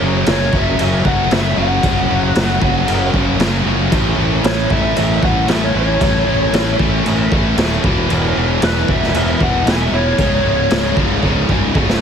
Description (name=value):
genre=hard rock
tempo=115 BPM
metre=4/4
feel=straight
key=unclear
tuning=A4 = 438 Hz
part: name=cranked stack guitar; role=riff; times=0.0-12.0 s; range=C#2 to A3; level=-21 LUFS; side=left 13 dB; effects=overdrive
part: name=high-gain distorted guitar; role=riff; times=0.0-12.0 s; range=C#2 to A3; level=-24 LUFS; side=equal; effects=distortion
part: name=tight distorted guitar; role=riff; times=0.0-12.0 s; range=C#2 to A3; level=-21 LUFS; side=right 15 dB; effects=distortion
part: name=fuzz fingered electric bass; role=bass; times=0.0-12.0 s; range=C#1 to A1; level=-20 LUFS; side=equal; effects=overdrive
part: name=lead guitar through a small cranked amp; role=melody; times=0.3-10.9 s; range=B4 to G#5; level=-20 LUFS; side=left 1 dB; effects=overdrive, analog delay
part: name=raw garage drum kit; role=drums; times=0.3-12.0 s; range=crash cymbal, kick drum, snare drum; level=-18 LUFS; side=equal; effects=none
room=little or no reverb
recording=heavily compressed radio sound, multiband compression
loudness=-13 LUFS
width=side -7 dB against mid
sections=0.0-12.0 A section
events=drum fill 11.2-12.0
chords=0.0 F#5; 3.9 A; 7.8 E5; 10.2 C#5